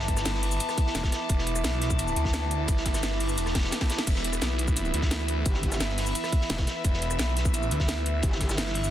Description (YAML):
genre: dark technical drum and bass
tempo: 173 BPM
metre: 4/4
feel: straight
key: E minor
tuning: A4 = 440 Hz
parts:
  - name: warm chamber string section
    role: sustained chords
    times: 0.0-8.9 s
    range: E3 to A5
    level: -34 LUFS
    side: left 2 dB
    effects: sidechain pumping
  - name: phased detuned saw bass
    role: bass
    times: 0.0-8.9 s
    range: E1 to D2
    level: -29 LUFS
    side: equal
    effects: phaser, tube saturation, sidechain pumping
  - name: warbly tape-like pad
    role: texture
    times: 0.0-8.9 s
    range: E4 to D6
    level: -34 LUFS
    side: right 2 dB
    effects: chorus, built-in reverb, sidechain pumping
  - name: crunchy breakbeat drum kit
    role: drums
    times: 0.1-8.8 s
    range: hi-hat, ride cymbal, snare drum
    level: -36 LUFS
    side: equal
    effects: high-pass filter on cymbals, high-pass filter on hats, high-pass filter on snare, high-pass filter on room
  - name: drum and bass drum kit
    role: drums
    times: 0.1-8.9 s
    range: crash cymbal, hi-hat, rim click, shaker, snare drum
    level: -32 LUFS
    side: equal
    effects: none
  - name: electronic kick drum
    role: drums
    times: 0.1-8.5 s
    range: none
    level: -26 LUFS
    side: equal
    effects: none
  - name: metallic wobble bass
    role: bass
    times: 5.5-8.6 s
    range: E1 to G1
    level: -31 LUFS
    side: equal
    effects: distortion, chorus
room: light reverb, studio reverb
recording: dense, heavily limited modern master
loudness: -24 LUFS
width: side -12 dB against mid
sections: 0.0-8.9 A section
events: drum fill 3.6-4.1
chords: 0.0 E5